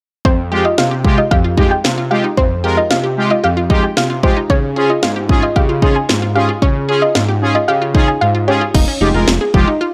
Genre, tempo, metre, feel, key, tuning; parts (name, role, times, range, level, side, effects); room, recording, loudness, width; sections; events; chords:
synth-pop; 113 BPM; 4/4; straight; F minor; A4 = 440 Hz
analog synth brass; accompaniment; 0.2-9.7 s; F2 to Bb4; -18 LUFS; equal; chorus
house drum kit; drums; 0.2-9.7 s; crash cymbal, kick drum, snare drum; -17 LUFS; equal
soft round pluck; second line; 0.3-8.6 s; C5 to Ab5; -21 LUFS; equal; chorus, analog delay
unison pluck; arpeggios; 0.3-9.9 s; C4 to Ab4; -22 LUFS; equal; analog delay
fat analog bass; bass; 8.7-9.7 s; F1; -19 LUFS; equal
digital ambience; dry, gritty hardware recording, transformer saturation; -14 LUFS; mono
0.3-8.7 A section; 8.7-9.9 B section
0.3 Fmadd9; 4.5 Db; 8.7 Fmadd9